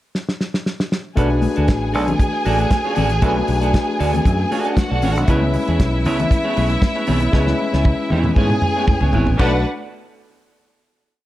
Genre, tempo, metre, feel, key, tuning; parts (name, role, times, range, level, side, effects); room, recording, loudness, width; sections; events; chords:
disco; 117 BPM; 4/4; straight; B dorian; A4 = 440 Hz
damped 70s drum kit; drums; 0.1-9.5 s; crash cymbal, hi-hat, kick drum, snare drum, toms; -19 LUFS; equal
clear studio string section; second line; 1.2-9.6 s; D4 to G#5; -23 LUFS; equal
overdriven tine electric piano; accompaniment; 1.2-9.6 s; G#3 to B4; -23 LUFS; left 3 dB
semi-hollow electric guitar; accompaniment; 1.2-9.6 s; B3 to D5; -24 LUFS; right 4 dB; spring reverb
fingered electric bass; bass; 1.2-9.6 s; G#1 to G#2; -20 LUFS; equal
congas; percussion; 1.2-9.6 s; -27 LUFS; left 4 dB
light reverb, small room ambience; dark, warm production; -15 LUFS; side -15 dB against mid
0.0-1.2 pickup bar; 1.2-9.4 groove; 9.4-11.3 final chord
drum fill 0.1-1.2, 7.3-9.4
0.0 N.C.; 1.2 Bm7; 5.3 C#m7; 9.4 Bm7